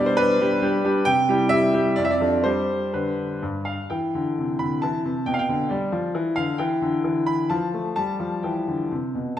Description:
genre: classical-period piano sonatina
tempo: 123-138 BPM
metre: 3/4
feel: rubato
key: unclear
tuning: A4 = 440 Hz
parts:
  - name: clear concert grand piano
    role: solo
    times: 0.0-9.4 s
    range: F2 to B5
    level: -20 LUFS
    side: equal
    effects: none
room: wet recital hall reverb, RT60 1.6 s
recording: none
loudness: -21 LUFS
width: side -11 dB against mid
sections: 0.0-3.9 A section; 3.9-9.4 B section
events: none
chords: 0.0 G/B; 1.1 C; 2.0 Dm/F; 2.5 G; 3.9 C; 5.3 G/B; 6.6 G6/D; 7.5 F; 8.0 G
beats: 0.18 0.63 | 1.07 1.51 1.98 | 2.46 2.94 3.42 | 3.90 4.37 4.82 | 5.27 5.71 6.15 | 6.59 7.04 7.50 | 7.96 8.44 8.91 | 9.38

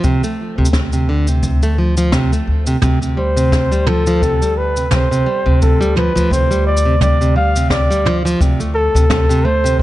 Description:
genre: folktronica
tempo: 86 BPM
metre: 4/4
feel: swing 56% on 16ths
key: unclear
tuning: A4 = 440 Hz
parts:
  - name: nylon-string guitar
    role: arpeggios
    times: 0.0-9.8 s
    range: C3 to A3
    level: -18 LUFS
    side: right 1 dB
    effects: tape echo
  - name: jazz brush drum kit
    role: drums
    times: 0.0-9.8 s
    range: cabasa, snare drum, toms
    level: -22 LUFS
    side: right 1 dB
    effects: none
  - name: kick drum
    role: drums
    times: 0.0-9.8 s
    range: none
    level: -19 LUFS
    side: equal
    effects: none
  - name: upright bass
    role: bass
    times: 0.6-9.8 s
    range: D2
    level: -16 LUFS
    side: equal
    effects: tube saturation
  - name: warm flugelhorn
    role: melody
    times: 3.2-9.8 s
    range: A4 to F5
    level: -17 LUFS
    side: left 1 dB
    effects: tape echo
room: light reverb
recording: dark, warm production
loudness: -12 LUFS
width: side -15 dB against mid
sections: 0.0-9.8 A section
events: none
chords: 0.0 D7(no3); 2.8 G7sus4/D; 8.4 D7(no3)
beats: | 0.04 0.73 1.43 2.13 | 2.83 3.52 4.22 4.92 | 5.62 6.32 7.01 7.71 | 8.41 9.11 9.80

